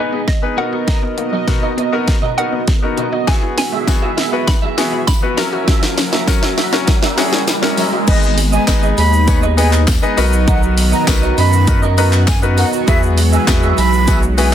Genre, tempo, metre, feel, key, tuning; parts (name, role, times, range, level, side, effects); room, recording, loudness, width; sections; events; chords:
dance-pop; 100 BPM; 4/4; straight; G# minor; A4 = 440 Hz
hollow square pluck; melody; 0.0-6.5 s; D#5 to B5; -24 LUFS; right 2 dB; chorus, dub echo
clear concert grand piano; accompaniment; 0.0-14.5 s; B3 to D#5; -20 LUFS; left 4 dB; sidechain pumping
chorused pulse-width pad; sustained chords; 0.0-14.5 s; D#3 to E5; -22 LUFS; right 2 dB; sidechain pumping
electric guitar at the edge of break-up; riff; 0.0-14.5 s; F#4 to E5; -23 LUFS; right 7 dB; ensemble chorus
riser; sound effects; 0.8-8.1 s; -26 LUFS; equal
wide unison pluck; arpeggios; 0.1-8.0 s; B2 to F#4; -27 LUFS; left 4 dB; auto-pan, sidechain pumping, dub echo
house drum kit; drums; 0.3-14.5 s; crash cymbal, handclaps, hi-hat, kick drum, shaker, snare drum; -16 LUFS; equal; overdrive
tambourine; percussion; 3.3-14.5 s; -30 LUFS; left 10 dB
breathy mellow silver concert flute; melody; 8.1-14.5 s; D#5 to B5; -21 LUFS; right 2 dB; dub echo
saturated sub bass; bass; 8.1-14.5 s; G#1 to F#2; -14 LUFS; equal; sidechain pumping
light reverb; dense, heavily limited modern master; -12 LUFS; side -10 dB against mid
0.0-8.1 A section; 8.1-14.5 B section
build-up 0.0-8.1; drum fill 0.0-8.1; riser 0.8-8.1; drop 8.1-14.5
0.0 G#m; 0.6 Bmaj7; 3.3 Eadd9; 5.4 F#7; 8.1 G#m; 10.2 Bmaj7; 12.9 Eadd9